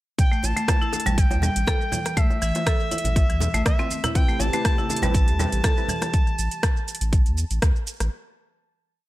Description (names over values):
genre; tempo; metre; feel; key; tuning
afro house; 121 BPM; 4/4; swing 53% on 16ths; A minor; A4 = 440 Hz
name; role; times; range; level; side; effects
expressive portamento lead; melody; 0.2-7.6 s; E5 to A5; -29 LUFS; equal; chorus, ping-pong delay
electronic kick drum; drums; 0.2-7.7 s; none; -21 LUFS; equal; none
house drum kit; drums; 0.2-8.1 s; hi-hat, rim click, shaker; -29 LUFS; right 1 dB; none
congas; percussion; 0.2-6.1 s; none; -33 LUFS; right 2 dB; none
buzzing marimba with hard mallets; arpeggios; 0.3-6.0 s; E3 to A4; -29 LUFS; equal; sidechain pumping, ping-pong delay
warm sub bass; bass; 0.4-8.1 s; A1 to E2; -24 LUFS; equal; sidechain pumping
bongos; percussion; 0.4-6.1 s; none; -35 LUFS; left 3 dB; none
warm analog pad; sustained chords; 4.2-6.1 s; C3 to G4; -35 LUFS; right 2 dB; chorus, sidechain pumping
deep mellow chord stab; stabs; 4.2-5.9 s; C4 to B4; -33 LUFS; right 1 dB; chorus, sidechain pumping, ping-pong delay
room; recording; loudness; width
little or no reverb; none; -20 LUFS; side -17 dB against mid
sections
0.2-8.1 drop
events
drop 0.2-8.1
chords
0.2 Am7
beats
| 0.19 0.68 1.18 1.67 | 2.17 2.67 3.16 3.66 | 4.15 4.65 5.14 5.64 | 6.14 6.63 7.13 7.62